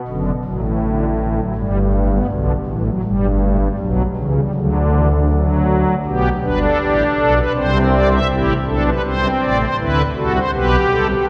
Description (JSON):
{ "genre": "classical, baroque-style 4-part fugue for pipe organ", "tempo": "80 BPM", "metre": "4/4", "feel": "straight", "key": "G major", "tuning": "A4 = 440 Hz", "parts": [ { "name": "pipe organ, strings celeste", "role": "solo", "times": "0.1-11.3 s", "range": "F#1 to E5", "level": "-17 LUFS", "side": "equal", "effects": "none" } ], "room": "wet cathedral reverb, RT60 4.0 s", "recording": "none", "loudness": "-17 LUFS", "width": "mono", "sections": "0.0-6.1 A section; 6.1-11.3 B section", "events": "none", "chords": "0.1 D/F#; 1.6 G; 3.0 A7/G (rootless); 4.5 D; 6.1 G; 7.6 C; 9.0 D7; 10.5 G/B" }